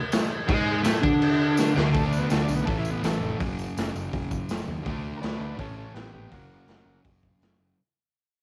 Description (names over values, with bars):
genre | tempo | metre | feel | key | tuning
garage rock duo or trio | 165 BPM | 4/4 | straight | unclear | A4 = 440 Hz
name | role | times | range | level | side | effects
raw garage drum kit | drums | 0.1-7.5 s | crash cymbal, hi-hat, kick drum, snare drum | -30 LUFS | equal | cassette tape
tambourine | percussion | 0.1-4.7 s | none | -46 LUFS | equal | none
fuzz guitar | riff | 0.5-7.8 s | F#2 to D4 | -30 LUFS | equal | distortion
fuzz picked electric bass | bass | 0.5-7.7 s | F1 to D3 | -32 LUFS | equal | overdrive
combo organ | melody | 1.9-7.0 s | A3 to B4 | -38 LUFS | equal | cassette tape
room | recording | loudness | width
little or no reverb | home recording on cassette | -26 LUFS | mono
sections
0.0-1.9 A section; 1.9-7.8 B section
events
drum fill 1.6-1.9; fade-out 1.9-7.8; transistor combo organ solo 1.9-7.8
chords
0.0 D5; 2.7 A5; 3.4 F#5; 4.8 D5; 5.6 A; 6.3 F#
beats
0.13 | 0.49 0.85 1.21 1.57 | 1.94 2.30 2.66 3.03 | 3.39 3.75 4.12 4.48 | 4.85 5.21 5.58 5.94 | 6.31 6.67 7.04 7.41